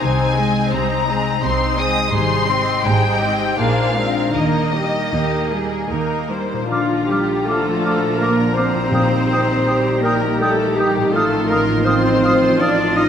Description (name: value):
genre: classical, slow romantic movement for symphony orchestra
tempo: 74-86 BPM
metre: 3/4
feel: rubato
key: Eb major, Bb major from 6.7 s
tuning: A4 = 440 Hz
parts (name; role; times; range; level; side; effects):
- muted symphonic violin section; melody; 0.0-13.1 s; Eb5 to Eb6; -24 LUFS; left 4 dB; none
- muted symphonic violin section; second line; 0.0-13.1 s; F4 to Eb5; -24 LUFS; left 2 dB; none
- muted symphonic viola section; accompaniment; 0.0-13.1 s; D3 to G4; -24 LUFS; right 1 dB; none
- concert harp; arpeggios; 0.0-13.1 s; Ab2 to Bb4; -24 LUFS; left 6 dB; none
- muted symphonic cello section; bass; 0.0-13.1 s; Ab2 to Eb4; -24 LUFS; right 3 dB; none
- muted symphonic double bass section; bass; 0.0-13.1 s; Ab1 to Eb2; -25 LUFS; right 4 dB; none
- bright clarinet; second line; 6.7-13.1 s; F4 to Eb5; -22 LUFS; equal; none
- silver concert flute; second line; 6.7-13.0 s; D6 to Eb6; -25 LUFS; equal; none
- warm oboe; second line; 6.7-13.1 s; F5 to G5; -26 LUFS; right 2 dB; none
- mellow French horn section; sustained chords; 6.7-13.1 s; F3 to Eb4; -23 LUFS; left 2 dB; none
- timpani; percussion; 8.9-10.0 s; Bb2; -24 LUFS; left 3 dB; none
room: wet scoring stage reverb, RT60 1.9 s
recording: none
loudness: -15 LUFS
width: side -8 dB against mid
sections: 0.0-6.7 A section; 6.7-13.1 B section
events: none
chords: 0.0 Ab/C; 2.1 Abmaj7; 3.6 Bb9; 4.3 Eb; 6.7 Bb; 8.9 Eb/Bb; 11.1 F7/A